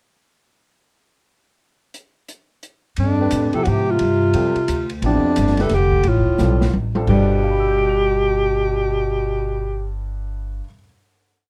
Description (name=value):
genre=modal jazz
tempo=175 BPM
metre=3/4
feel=swing 63% on 8ths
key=G mixolydian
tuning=A4 = 440 Hz
part: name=open jazz drum kit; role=drums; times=1.9-9.1 s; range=crash cymbal, cymbal swell, hi-hat, kick drum, ride cymbal, snare drum, toms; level=-31 LUFS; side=equal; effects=none
part: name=warm alto saxophone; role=melody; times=3.0-9.9 s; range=D4 to A4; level=-22 LUFS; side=equal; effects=none
part: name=warm bass clarinet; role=second line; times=3.0-9.9 s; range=F2 to D3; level=-27 LUFS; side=equal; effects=none
part: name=upright bass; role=bass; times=3.0-10.6 s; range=D1 to A2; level=-23 LUFS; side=equal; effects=none
part: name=warm grand piano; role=accompaniment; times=3.2-10.8 s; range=G2 to F7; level=-28 LUFS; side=equal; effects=none
room=little or no reverb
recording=close, detailed microphones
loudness=-19 LUFS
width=mono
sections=1.9-3.0 pickup bar; 3.0-7.1 A section; 7.1-9.1 final chord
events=drum fill 6.4-7.1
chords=1.9 N.C.; 3.0 G7sus4; 5.0 Dm; 7.1 G